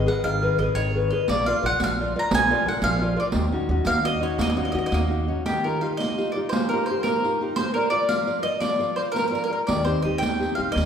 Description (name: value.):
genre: italian folk, Italian serenade.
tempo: 114 BPM (dotted quarters).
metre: 6/8.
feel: rubato.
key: Eb minor, Eb major from 5.5 s.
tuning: A4 = 440 Hz.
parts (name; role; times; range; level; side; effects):
bowl-back mandolin; melody; 0.0-10.9 s; G4 to Bb5; -24 LUFS; right 1 dB; none.
nylon-string guitar; accompaniment; 0.0-10.9 s; Eb3 to D5; -26 LUFS; left 2 dB; none.
upright bass; bass; 0.0-5.3, 9.7-10.9 s; Ab1 to Eb2; -27 LUFS; equal; none.
riq; percussion; 1.3-10.9 s; none; -29 LUFS; right 2 dB; none.
room: wet recital hall reverb, RT60 1.6 s.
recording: recorded in a church or concert hall.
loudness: -21 LUFS.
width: side -8 dB against mid.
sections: 0.0-5.5 A section; 5.5-10.9 B section.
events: none.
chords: 0.0 Abmadd9; 1.3 Bb; 3.3 Ebm7; 5.5 Ebadd9; 7.6 Bb; 9.7 Eb6.